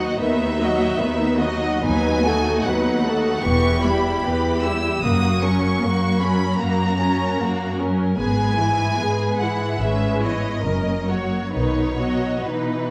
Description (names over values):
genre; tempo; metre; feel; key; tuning
classical, slow romantic movement for string orchestra; 65-78 BPM; 4/4; rubato; B major; A4 = 440 Hz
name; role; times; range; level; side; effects
clear symphonic violin section; melody; 0.0-12.9 s; B4 to E6; -29 LUFS; equal; none
rich studio violin section; second line; 0.0-12.9 s; A#3 to D#5; -27 LUFS; equal; none
rich studio viola section; accompaniment; 0.0-12.9 s; D#3 to D#4; -27 LUFS; equal; none
clear studio cello section; bass; 0.0-12.9 s; D#2 to B2; -26 LUFS; equal; none
rich studio double bass section; bass; 1.8-12.3 s; E1 to D#2; -30 LUFS; equal; none
room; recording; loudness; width
wet concert hall reverb, RT60 1.8 s; vinyl crackle; -21 LUFS; mono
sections
0.0-12.9 A section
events
none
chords
0.0 B/D#; 1.9 B7/D#; 3.4 Em; 5.0 F#; 8.2 E/G#; 9.8 C#m7/G#; 10.6 F#; 11.5 B